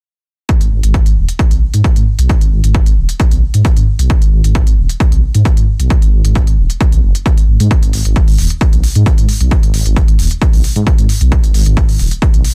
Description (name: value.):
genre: driving peak-time techno.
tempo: 133 BPM.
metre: 4/4.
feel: straight.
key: G# minor.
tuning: A4 = 440 Hz.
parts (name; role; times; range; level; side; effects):
electronic hi-hat; drums; 0.5-12.5 s; none; -27 LUFS; equal; none.
electronic kick drum; drums; 0.5-12.3 s; none; -14 LUFS; equal; none.
dark detuned saw bass; bass; 0.6-12.4 s; D#1 to G#2; -15 LUFS; equal; sidechain pumping.
room: little or no reverb.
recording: dense, heavily limited modern master.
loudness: -12 LUFS.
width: mono.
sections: 0.5-12.5 A section.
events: none.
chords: none.